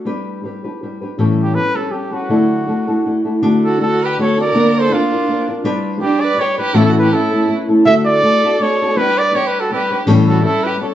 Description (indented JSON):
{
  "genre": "mexican folk, mariachi",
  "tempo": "163 BPM",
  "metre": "3/4",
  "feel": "swing 54% on 8ths",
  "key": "D major",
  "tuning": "A4 = 439 Hz",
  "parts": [
    { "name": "nylon-string guitar", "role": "accompaniment", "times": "0.0-10.9 s", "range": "A2 to B4", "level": "-16 LUFS", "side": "left 1 dB", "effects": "none" },
    { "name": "warm trumpet", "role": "melody", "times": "1.4-10.9 s", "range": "F4 to E5", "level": "-17 LUFS", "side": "right 1 dB", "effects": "plate reverb, tape echo" },
    { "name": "warm violin", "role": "second line", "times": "3.7-10.9 s", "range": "D4 to B4", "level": "-21 LUFS", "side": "right 4 dB", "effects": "none" }
  ],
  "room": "wet studio reverb, RT60 0.6 s",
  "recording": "heard from further back in the room, nothing above 8.0 kHz",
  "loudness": "-13 LUFS",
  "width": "side -12 dB against mid",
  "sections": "0.0-3.4 A section; 3.4-10.9 A section",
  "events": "none",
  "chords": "0.1 G; 1.2 A7; 2.3 Dadd9; 3.4 D; 4.6 Bb/D; 5.7 G; 6.8 A; 7.9 D; 9.0 G; 10.1 A7"
}